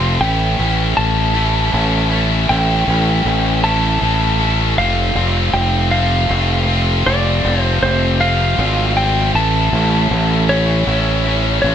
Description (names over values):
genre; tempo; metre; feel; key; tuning
post-rock; 52 BPM (dotted quarters); 6/8; straight; unclear; A4 = 441 Hz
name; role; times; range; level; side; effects
clean lap steel guitar; melody; 0.0-11.7 s; C5 to C6; -20 LUFS; equal; slapback echo
distorted electric guitar; riff; 0.0-11.7 s; A2 to F4; -17 LUFS; left 1 dB; overdrive
growling fingered electric bass; bass; 0.0-11.7 s; F1 to A1; -17 LUFS; equal; overdrive
room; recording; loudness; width
light reverb; none; -13 LUFS; side -9 dB against mid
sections
0.0-11.7 A section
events
none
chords
0.2 A7; 4.8 F; 9.3 A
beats
| 0.21 1.35 | 2.49 3.64 | 4.78 5.92 | 7.06 8.20 | 9.34 10.49 | 11.63